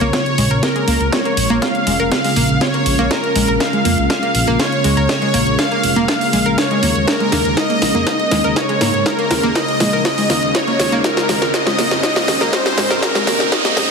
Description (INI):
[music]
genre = progressive house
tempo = 121 BPM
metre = 4/4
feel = straight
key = Bb minor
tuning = A4 = 439 Hz
[part]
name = soft supersaw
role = melody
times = 0.0-13.9 s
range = Bb4 to F5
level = -19 LUFS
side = equal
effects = sidechain pumping, dub echo
[part]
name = lush unison pad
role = sustained chords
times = 0.0-13.9 s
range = Db3 to F4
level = -21 LUFS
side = equal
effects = chorus, sidechain pumping
[part]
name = analog pluck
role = arpeggios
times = 0.0-13.7 s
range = Ab3 to Bb4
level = -21 LUFS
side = equal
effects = chorus, sidechain pumping, dub echo
[part]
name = fat analog bass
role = bass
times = 0.0-13.9 s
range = F1 to Ab2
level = -22 LUFS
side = equal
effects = sidechain pumping
[part]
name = house drum kit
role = drums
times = 0.0-13.9 s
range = hi-hat, snare drum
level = -19 LUFS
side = equal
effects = overdrive
[part]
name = electronic kick drum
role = drums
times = 0.1-13.6 s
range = none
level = -27 LUFS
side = equal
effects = none
[part]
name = riser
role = sound effects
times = 9.7-13.9 s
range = none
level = -25 LUFS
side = right 1 dB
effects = none
[sound]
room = moderate lush hall reverb, RT60 1.9 s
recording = dense, heavily limited modern master, high-pass filter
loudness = -13 LUFS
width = side -5 dB against mid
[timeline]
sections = 0.0-13.9 A section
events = build-up 0.0-13.9; drum fill 0.0-13.9; filter sweep on analog synth pad 0.0-13.9; riser 9.7-13.9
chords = 0.0 Bbm7; 7.1 Eb7sus4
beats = 0.13 0.63 | 1.12 1.62 2.12 2.61 | 3.11 3.60 4.10 4.60 | 5.09 5.59 6.08 6.58 | 7.08 7.57 8.07 8.56 | 9.06 9.55 10.05 10.55 | 11.04 11.54 12.03 12.53 | 13.03 13.52